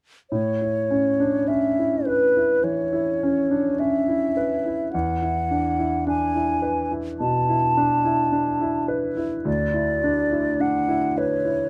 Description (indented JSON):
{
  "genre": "classical, impressionist duo for flute and grand piano",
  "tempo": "53 BPM",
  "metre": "4/4",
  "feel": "rubato",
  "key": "A major",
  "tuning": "A4 = 440 Hz",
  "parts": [
    { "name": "mellow hollow silver concert flute", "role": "melody", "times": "0.3-11.7 s", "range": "B4 to A5", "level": "-25 LUFS", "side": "equal", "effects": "none" },
    { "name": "clear concert grand piano", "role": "accompaniment", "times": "0.3-11.7 s", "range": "D2 to B4", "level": "-25 LUFS", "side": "equal", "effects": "none" }
  ],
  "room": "moderate studio ambience, RT60 0.5 s",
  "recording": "dark, warm production",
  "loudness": "-22 LUFS",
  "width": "mono",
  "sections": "0.3-11.7 A section",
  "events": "none",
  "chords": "0.3 Aadd9; 4.9 E9sus4; 9.5 D69"
}